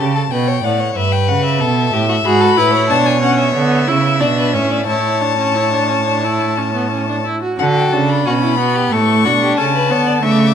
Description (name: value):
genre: classical, baroque-style fugue for string quartet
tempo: 91 BPM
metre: 4/4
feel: straight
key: unclear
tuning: A4 = 438 Hz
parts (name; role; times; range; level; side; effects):
- rich violin; melody; 0.0-10.5 s; E5 to D6; -18 LUFS; left 10 dB; none
- rich violin; second line; 0.0-10.5 s; E4 to E5; -20 LUFS; left 3 dB; none
- rich cello; bass; 0.0-10.5 s; G2 to D3; -18 LUFS; right 5 dB; none
- clear viola; accompaniment; 2.3-10.5 s; A3 to F#4; -17 LUFS; right 2 dB; none
room: moderate recital hall reverb, RT60 1.9 s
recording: none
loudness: -12 LUFS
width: side -8 dB against mid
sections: 0.0-7.6 A section; 7.6-10.5 B section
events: none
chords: 0.0 G; 1.0 Em/G; 2.3 E7/G#; 4.9 A; 7.6 D; 8.9 A